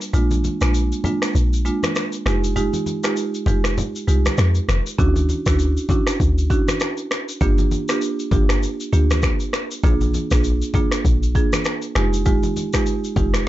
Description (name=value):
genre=afrobeats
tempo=99 BPM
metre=4/4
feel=swing 58% on 16ths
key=Bb mixolydian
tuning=A4 = 443 Hz
part: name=afro-pop drum kit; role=drums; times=0.0-13.5 s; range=finger snaps, kick drum, rim click, shaker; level=-22 LUFS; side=equal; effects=overdrive
part: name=marimba with medium mallets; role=accompaniment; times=0.1-13.5 s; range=Ab3 to Ab4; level=-23 LUFS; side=right 3 dB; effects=none
part: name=deep log drum bass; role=bass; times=0.1-13.5 s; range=F1 to F2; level=-19 LUFS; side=equal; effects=none
part: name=congas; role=percussion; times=0.1-13.3 s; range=none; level=-27 LUFS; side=left 2 dB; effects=none
room=little or no reverb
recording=dark, warm production, nothing above 7.8 kHz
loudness=-17 LUFS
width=side -15 dB against mid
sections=0.0-13.5 A section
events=break 0.0-5.0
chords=0.1 Bb7; 2.3 Fm9; 5.0 Dmaj9; 7.4 Gm7; 9.8 Bb7; 12.0 Fm9